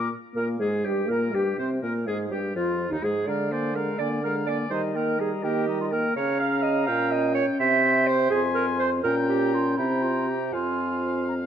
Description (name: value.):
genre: quick classical-period movement for wind quintet.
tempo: 83 BPM (dotted quarters).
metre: 6/8.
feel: straight.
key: Eb major, F minor from 6.2 s.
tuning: A4 = 440 Hz.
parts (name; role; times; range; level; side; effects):
silver concert flute; melody; 0.0-11.3 s; Eb4 to C6; -33 LUFS; left 8 dB; none.
clear oboe; second line; 0.0-11.5 s; Eb4 to Ab5; -34 LUFS; left 3 dB; none.
dark French horn; accompaniment; 0.0-11.5 s; Eb3 to Db4; -29 LUFS; left 2 dB; none.
warm clarinet; accompaniment; 0.0-11.3 s; Eb4 to F5; -26 LUFS; right 6 dB; none.
mellow bassoon; bass; 0.0-11.5 s; Eb2 to Eb3; -29 LUFS; right 1 dB; none.
room: moderate scoring stage reverb, RT60 2.0 s.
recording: close, detailed microphones.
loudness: -22 LUFS.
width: side -9 dB against mid.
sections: 0.4-11.5 A section.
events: none.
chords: 0.4 Abmaj9; 1.8 Fm7; 3.3 Bb7/D; 4.7 Eb; 6.2 Db; 6.9 Gdim/Bb; 7.6 C; 8.3 Fm; 9.0 Gdim/Bb; 9.8 C5; 10.5 Fm.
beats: | 0.35 1.09 | 1.82 2.54 | 3.27 3.98 | 4.71 5.43 | 6.15 6.87 | 7.59 8.31 | 9.04 9.78 | 10.53 11.28.